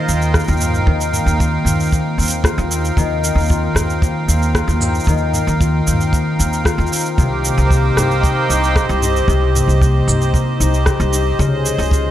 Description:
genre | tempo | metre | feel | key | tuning
folktronica | 114 BPM | 4/4 | straight | Eb major | A4 = 440 Hz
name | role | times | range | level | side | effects
accordion | sustained chords | 0.0-12.1 s | C4 to G5 | -21 LUFS | right 3 dB | light tremolo tuning
concert harp | arpeggios | 0.0-12.1 s | C3 to Bb4 | -19 LUFS | left 2 dB | tape echo
upright bass | bass | 0.1-12.1 s | C2 to Eb2 | -18 LUFS | equal | none
organic electronic drum kit | drums | 0.1-12.0 s | rim click, shaker, toms | -22 LUFS | right 1 dB | studio reverb
kick drum | drums | 0.3-12.0 s | none | -17 LUFS | equal | studio reverb
room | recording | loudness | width
light reverb, small room reverb | none | -14 LUFS | side -12 dB against mid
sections
0.0-12.1 A section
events
none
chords
0.0 Eb69; 7.2 Cm7; 11.4 Dbmaj7

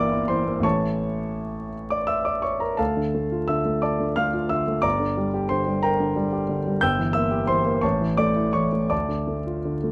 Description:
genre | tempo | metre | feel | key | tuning
classical, romantic character piece for solo piano | 53-62 BPM (dotted quarters) | 6/8 | rubato | D minor | A4 = 440 Hz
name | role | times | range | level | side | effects
warm concert grand piano | solo | 0.0-9.9 s | G1 to G6 | -24 LUFS | equal | none
room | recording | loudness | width
light reverb | close, detailed microphones, vinyl crackle | -24 LUFS | mono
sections
0.0-9.9 A section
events
none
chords
0.0 Edim/G; 0.6 A; 2.8 Dm; 4.8 Gm; 6.8 Edim/G; 7.8 A; 8.9 Dm

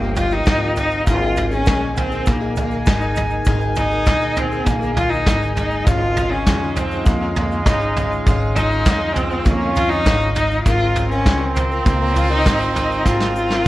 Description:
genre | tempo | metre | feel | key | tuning
indie folk with a building arrangement | 100 BPM | 4/4 | straight | Ab major | A4 = 440 Hz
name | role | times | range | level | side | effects
rich cello | melody | 0.0-13.7 s | Bb3 to F4 | -21 LUFS | left 1 dB | slapback echo
picked plugged-in twelve-string acoustic guitar | accompaniment | 0.0-13.7 s | Ab2 to Bb4 | -28 LUFS | left 3 dB | wide subtle chorus
mellow brass ensemble | sustained chords | 0.0-13.7 s | Eb4 to Bb5 | -30 LUFS | right 2 dB | none
upright bass | bass | 0.0-13.7 s | G1 to F2 | -23 LUFS | equal | none
soft brush drum kit | drums | 0.2-13.7 s | kick drum, snare drum, toms | -20 LUFS | equal | none
egg shaker | percussion | 0.2-13.6 s | none | -44 LUFS | right 5 dB | none
warm trumpet | second line | 5.9-13.7 s | Ab3 to Db4 | -24 LUFS | right 3 dB | none
room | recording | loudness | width
light reverb | worn, warbling old tape, cassette tape, warbly pitch drift | -16 LUFS | side -16 dB against mid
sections
0.0-13.7 A section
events
drum fill 13.1-13.7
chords
0.0 Ebadd9; 1.1 Absus2; 5.9 Dbadd9/Ab; 10.7 Bbm/Ab

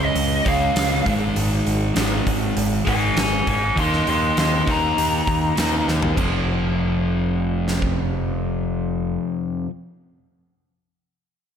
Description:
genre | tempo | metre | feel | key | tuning
hard rock | 100 BPM | 4/4 | straight | F minor | A4 = 442 Hz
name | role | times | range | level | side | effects
lead guitar through a small cranked amp | melody | 0.0-5.9 s | C5 to C6 | -22 LUFS | equal | overdrive, digital delay
crunchy overdriven guitar | riff | 0.0-9.7 s | F2 to Eb4 | -22 LUFS | equal | none
growling picked electric bass | bass | 0.0-9.2 s | F1 to Eb2 | -25 LUFS | equal | overdrive
huge arena drum kit | drums | 0.2-8.0 s | crash cymbal, hi-hat, kick drum, snare drum, toms | -25 LUFS | equal | none
room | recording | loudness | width
light reverb, studio ambience | none | -18 LUFS | side -8 dB against mid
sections
0.0-6.2 A section; 6.2-8.6 B section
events
lead electric guitar solo 0.0-6.2; drum fill 5.9-6.2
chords
0.0 Db; 1.1 Ab; 3.8 Eb5; 6.2 F5

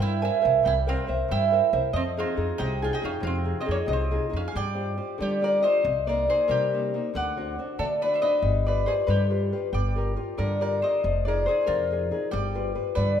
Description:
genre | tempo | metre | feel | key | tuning
italian folk, Italian serenade | 92 BPM (dotted quarters) | 6/8 | straight | F minor | A4 = 444 Hz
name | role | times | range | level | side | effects
Celtic harp | melody | 0.0-13.2 s | Bb4 to Ab5 | -27 LUFS | left 2 dB | none
mandolin | second line | 0.0-13.2 s | Bb3 to F5 | -30 LUFS | right 9 dB | none
nylon-string guitar | accompaniment | 0.0-13.2 s | C3 to G5 | -31 LUFS | left 3 dB | none
upright bass | bass | 0.0-13.2 s | F1 to G3 | -28 LUFS | equal | none
room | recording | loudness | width
moderate recital hall reverb, RT60 1.4 s | minimal, uncompressed stereo recording | -23 LUFS | side -8 dB against mid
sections
0.0-4.5 A section; 4.5-13.2 B section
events
none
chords
0.0 C7; 1.9 Fm7; 4.5 G7sus4; 5.8 Cm7; 7.1 D7; 8.4 G7; 9.7 Gm7; 11.0 Fm7; 12.3 G7

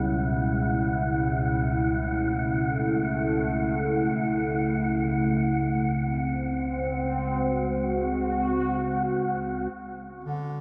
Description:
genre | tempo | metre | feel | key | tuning
dark ambient drone | free time | none | none | unclear | A4 = 436 Hz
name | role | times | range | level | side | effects
sweeping resonant pad | sustained chords | 0.0-10.6 s | C#2 to F#4 | -29 LUFS | equal | chorus
analog drone | drone | 0.0-10.6 s | C#2 to E3 | -32 LUFS | equal | chorus
wind-like tuned noise texture | texture | 0.0-10.6 s | F#5 to G#5 | -35 LUFS | equal | built-in reverb
mellow bass clarinet | melody | 10.2-10.6 s | D3 | -33 LUFS | equal | none
room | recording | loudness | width
wet cathedral reverb, RT60 6.4 s | none | -26 LUFS | mono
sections
0.0-9.7 A section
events
none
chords
0.0 G6/C#; 5.8 G#7; 9.7 C#m

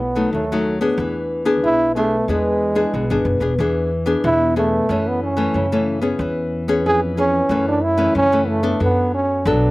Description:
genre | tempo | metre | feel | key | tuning
samba and choro | 92 BPM | 4/4 | straight | unclear | A4 = 441 Hz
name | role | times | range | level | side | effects
breathy trombone | melody | 0.0-9.7 s | G#3 to G#4 | -18 LUFS | right 1 dB | none
nylon-string guitar | accompaniment | 0.0-9.7 s | F#2 to A4 | -20 LUFS | left 2 dB | none
upright bass | bass | 0.0-9.7 s | E1 to F#2 | -24 LUFS | equal | none
room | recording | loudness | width
little or no reverb | recorded outdoors, with no room sound | -16 LUFS | side -20 dB against mid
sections
0.0-9.7 A section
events
none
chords
0.0 B7; 1.0 E7; 4.9 F#m7; 6.2 C#m7/E; 7.5 F#m7; 8.8 Bm7/F#

